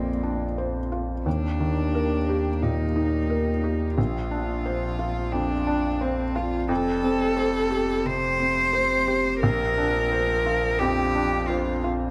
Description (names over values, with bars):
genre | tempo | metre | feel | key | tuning
neoclassical piano and strings | 88 BPM | 4/4 | rubato | Bb major | A4 = 440 Hz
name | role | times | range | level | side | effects
warm cello | second line | 0.0-11.8 s | Bb3 to C5 | -28 LUFS | equal | none
felt-muted upright piano | accompaniment | 0.0-12.1 s | Bb1 to C5 | -28 LUFS | equal | none
warbly tape-like pad | sustained chords | 0.0-12.1 s | Bb3 to G5 | -37 LUFS | equal | chorus, built-in reverb
pure sine sub bass | bass | 0.0-12.1 s | F1 to Eb2 | -33 LUFS | equal | none
room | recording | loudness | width
moderate recital hall reverb, RT60 1.4 s | none | -24 LUFS | mono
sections
0.0-12.1 A section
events
none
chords
0.0 Bbadd9; 1.3 Eb; 4.0 Bbadd9; 6.7 Fadd9; 9.4 Bbadd9